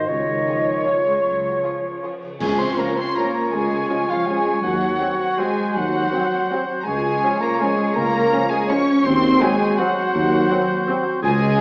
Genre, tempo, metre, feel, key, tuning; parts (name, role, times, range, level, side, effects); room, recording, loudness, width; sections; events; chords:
classical, orchestral ballroom waltz; 147-178 BPM; 3/4; rubato; Db major; A4 = 440 Hz
clear oboe; second line; 0.0-11.6 s; Ab4 to Db5; -29 LUFS; equal
mellow hollow silver concert flute; second line; 0.0-11.6 s; Db5 to Db6; -28 LUFS; equal
warm clarinet; second line; 0.0-11.6 s; F4 to Gb4; -30 LUFS; equal
muted studio viola section; accompaniment; 0.0-11.0 s; C4 to Db5; -31 LUFS; equal
mellow French horn section; sustained chords; 0.0-11.6 s; Db3 to Db4; -28 LUFS; equal
muted chamber cello section; bass; 0.0-11.6 s; Db3 to Db4; -31 LUFS; equal
muted chamber double bass section; bass; 0.0-11.5 s; Db2 to Eb2; -35 LUFS; equal
cymbal swell, clash cymbals and concert bass drum; percussion; 0.1-3.1 s; -41 LUFS; equal
muted chamber violin section; melody; 0.5-11.6 s; Db5 to Db6; -31 LUFS; equal
muted symphonic violin section; second line; 0.5-11.6 s; F4 to Db5; -31 LUFS; equal
dark tuba; bass; 2.4-11.5 s; Db2 to Eb2; -29 LUFS; equal
timpani; percussion; 2.4-2.9 s; Db3; -34 LUFS; equal
clear trombone section; sustained chords; 2.8-11.0 s; F3 to Db4; -31 LUFS; equal
wet recital hall reverb, RT60 1.5 s; worn, warbling old tape, cassette tape, warbly pitch drift, small speaker sound; -20 LUFS; mono
0.0-2.4 A section; 2.4-11.6 A section
band accent 2.4-2.8
0.1 Db; 4.6 Cdim/Eb; 6.9 Db; 9.0 Cdim/Eb